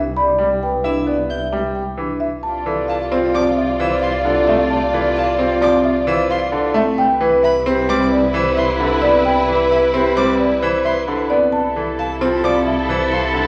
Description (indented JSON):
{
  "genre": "classical, minimalist pattern music",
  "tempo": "132 BPM",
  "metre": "5/4",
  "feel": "straight",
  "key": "unclear",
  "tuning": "A4 = 441 Hz",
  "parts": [
    { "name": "marimba with soft mallets", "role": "melody", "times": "0.0-13.4 s", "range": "C5 to B5", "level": "-24 LUFS", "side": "equal", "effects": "none" },
    { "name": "rich double bass", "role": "bass", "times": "0.0-13.5 s", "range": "C2", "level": "-29 LUFS", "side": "equal", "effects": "none" },
    { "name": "vibraphone with soft mallets", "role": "arpeggios", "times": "0.2-13.5 s", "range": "C4 to E5", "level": "-23 LUFS", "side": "equal", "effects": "none" },
    { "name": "bright concert grand piano", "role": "accompaniment", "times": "0.4-13.5 s", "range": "D3 to E4", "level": "-24 LUFS", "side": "equal", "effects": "none" },
    { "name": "rich violin", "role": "arpeggios", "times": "0.8-13.3 s", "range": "A5 to G6", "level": "-31 LUFS", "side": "equal", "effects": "none" },
    { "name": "rich studio string section", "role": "sustained chords", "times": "2.4-13.5 s", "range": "E4 to D5", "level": "-23 LUFS", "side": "equal", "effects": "none" }
  ],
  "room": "wet recital hall reverb, RT60 1.5 s",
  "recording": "none",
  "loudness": "-17 LUFS",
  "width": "mono",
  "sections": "0.0-2.4 A section; 2.4-13.5 A section",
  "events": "none",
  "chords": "0.0 Em/C; 2.4 Dm7/C; 7.0 Cmaj7; 11.5 Fmaj7/C"
}